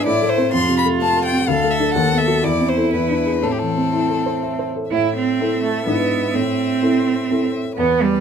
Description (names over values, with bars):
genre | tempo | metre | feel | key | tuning
quick classical-period movement for piano trio | 126 BPM | 3/4 | rubato | A minor | A4 = 440 Hz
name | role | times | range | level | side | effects
clear violin | melody | 0.0-8.2 s | G4 to C6 | -23 LUFS | left 5 dB | none
clear cello | second line | 0.0-8.2 s | G3 to A4 | -21 LUFS | right 7 dB | none
warm baby grand piano | accompaniment | 0.0-8.2 s | D2 to E5 | -19 LUFS | left 2 dB | none
room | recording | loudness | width
little or no reverb | close, detailed microphones | -16 LUFS | side -7 dB against mid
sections
0.0-4.9 A section; 4.9-8.2 B section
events
none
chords
0.1 Am; 0.5 F; 1.5 Dm; 2.0 B7/D#; 2.4 Am/E; 2.9 E7; 3.4 Am; 5.9 E7/G#; 6.4 Am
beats
0.06 | 0.53 1.00 1.48 | 1.95 2.44 2.92 | 3.43 3.93 4.43 | 4.92 5.40 5.87 | 6.35 6.83 7.30 | 7.78